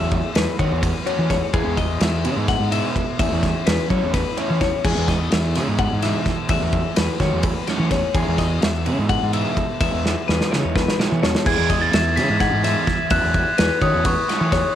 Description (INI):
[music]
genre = math rock and midwest emo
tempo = 254 BPM (eighths)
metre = 7/8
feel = straight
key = unclear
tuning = A4 = 440 Hz
[part]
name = twelve-string electric guitar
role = accompaniment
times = 0.0-13.1 s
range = E2 to A4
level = -29 LUFS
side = right 8 dB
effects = cassette tape
[part]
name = twelve-string electric guitar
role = arpeggios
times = 0.0-14.8 s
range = G#4 to F#5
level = -25 LUFS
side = left 12 dB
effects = cassette tape
[part]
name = overdriven semi-hollow guitar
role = riff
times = 0.0-14.6 s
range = E3 to F#4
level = -28 LUFS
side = right 10 dB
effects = cassette tape
[part]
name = fuzz fingered electric bass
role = bass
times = 0.0-14.6 s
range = E2 to F#3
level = -22 LUFS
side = equal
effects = overdrive
[part]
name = loose indie drum kit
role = drums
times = 0.1-14.6 s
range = crash cymbal, kick drum, ride cymbal, snare drum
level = -22 LUFS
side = equal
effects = cassette tape
[part]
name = glockenspiel with rubber mallets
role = melody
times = 11.5-14.6 s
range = C#6 to B6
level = -22 LUFS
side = right 2 dB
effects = cassette tape
[sound]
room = light reverb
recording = home recording on cassette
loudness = -17 LUFS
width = side -10 dB against mid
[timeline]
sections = 0.0-11.5 A section; 11.5-14.8 B section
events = drum fill 10.0-11.5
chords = 0.0 F#m11/E; 3.2 A69/E; 4.8 F#m11/E; 9.8 Emaj7; 11.5 Emaj9; 13.1 F#m7/E